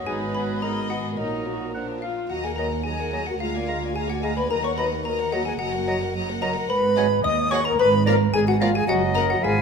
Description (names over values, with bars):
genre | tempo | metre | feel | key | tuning
cinematic, playful, whimsical film cue | 109 BPM | 2/4 | straight | Eb minor | A4 = 440 Hz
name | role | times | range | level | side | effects
warm chamber violin section | melody | 0.0-9.2 s | F4 to Bb5 | -37 LUFS | left 4 dB | none
xylophone with plastic mallets | melody | 0.0-9.6 s | Eb5 to Eb6 | -31 LUFS | left 4 dB | none
warm chamber violin section | second line | 0.0-9.2 s | Bb3 to F5 | -36 LUFS | left 2 dB | none
warm oboe | second line | 0.0-9.6 s | Eb5 to Cb6 | -34 LUFS | left 1 dB | none
warm bassoon | accompaniment | 0.0-9.6 s | F3 to Ab3 | -36 LUFS | right 2 dB | none
warm chamber viola section | accompaniment | 0.0-9.2 s | Gb3 to Eb5 | -35 LUFS | right 3 dB | none
mellow French horn section | sustained chords | 0.0-9.6 s | Bb3 to Eb5 | -25 LUFS | left 2 dB | none
dark chamber cello section | bass | 0.0-9.6 s | D2 to Bb2 | -29 LUFS | right 3 dB | none
warm chamber double bass section | bass | 0.0-9.6 s | Gb1 to Eb2 | -30 LUFS | right 6 dB | none
bright silver concert flute | second line | 0.1-9.6 s | F5 to Eb6 | -31 LUFS | left 1 dB | none
mellow clarinet | second line | 0.1-9.6 s | Eb4 to F5 | -36 LUFS | equal | none
room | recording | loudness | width
moderate scoring stage reverb, RT60 1.9 s | none | -21 LUFS | side -6 dB against mid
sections
0.0-2.3 A section; 2.3-9.6 B section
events
none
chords
0.1 Abm7; 1.2 Ebm/Bb; 1.7 Bb; 2.3 Ebm; 3.4 Bb7/D; 4.5 Ebm; 5.6 Ebm/Gb; 6.7 Abm7; 7.8 Bb7/Ab; 8.9 Ebm/Gb